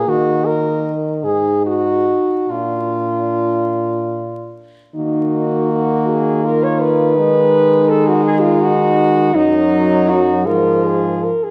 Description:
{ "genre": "classical, lyrical piece for horn quartet", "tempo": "47-56 BPM (dotted quarters)", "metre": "6/8", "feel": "rubato", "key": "Eb minor", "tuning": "A4 = 435 Hz", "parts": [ { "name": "warm French horn", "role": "melody", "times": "0.0-11.5 s", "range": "Eb4 to Eb5", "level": "-20 LUFS", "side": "equal", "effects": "none" }, { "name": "clear French horn", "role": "second line", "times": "0.0-11.3 s", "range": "Eb4 to Bb4", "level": "-22 LUFS", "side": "equal", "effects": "none" }, { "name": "warm French horn", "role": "accompaniment", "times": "0.0-11.3 s", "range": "F3 to Eb4", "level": "-23 LUFS", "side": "equal", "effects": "none" }, { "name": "mellow French horn", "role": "bass", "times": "0.0-11.3 s", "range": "Gb2 to Eb3", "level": "-22 LUFS", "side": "equal", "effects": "none" } ], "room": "moderate recital hall reverb, RT60 1.6 s", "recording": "vinyl crackle", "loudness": "-16 LUFS", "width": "mono", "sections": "0.0-5.0 A section; 5.0-11.5 B section", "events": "none", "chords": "0.1 Eb5; 1.2 Ab5; 2.5 Bb; 5.0 Ebm; 7.2 Ebmadd11; 9.3 Ebm/Gb; 10.5 Fmadd11/Ab" }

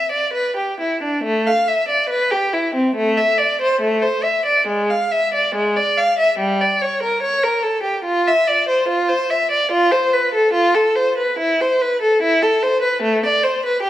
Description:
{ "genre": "classical, baroque-style suite movement for unaccompanied violin", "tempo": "71 BPM", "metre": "4/4", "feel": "uneven beats, rubato", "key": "A minor", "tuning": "A4 = 439 Hz", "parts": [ { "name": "rich violin", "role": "solo", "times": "0.0-13.9 s", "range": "G3 to F5", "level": "-15 LUFS", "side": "equal", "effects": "none" } ], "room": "moderate recital hall reverb, RT60 1.7 s", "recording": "none", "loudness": "-15 LUFS", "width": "side -13 dB against mid", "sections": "0.0-1.2 A section; 1.2-13.9 A section", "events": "none", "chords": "none" }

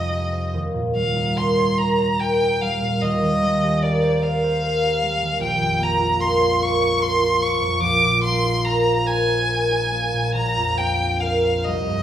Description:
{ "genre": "classical, impressionist duo for violin and harp", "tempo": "49 BPM (dotted quarters)", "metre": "6/8", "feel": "uneven beats, rubato", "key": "unclear", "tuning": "A4 = 440 Hz", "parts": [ { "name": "rich violin", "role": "melody", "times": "0.0-12.0 s", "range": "D5 to D6", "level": "-21 LUFS", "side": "equal", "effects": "none" }, { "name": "concert harp", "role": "accompaniment", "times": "0.0-12.0 s", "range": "Bb1 to Db5", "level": "-20 LUFS", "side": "equal", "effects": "none" } ], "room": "wet recital hall reverb, RT60 1.5 s", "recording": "recorded in a church or concert hall", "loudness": "-18 LUFS", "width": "side -10 dB against mid", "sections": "0.0-12.0 A section", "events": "none", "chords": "0.0 Abmaj7/F; 0.5 Eb7; 3.0 Fm11/Eb; 5.4 Bbm6; 7.8 Abadd9/Bb; 10.3 Bbadd9" }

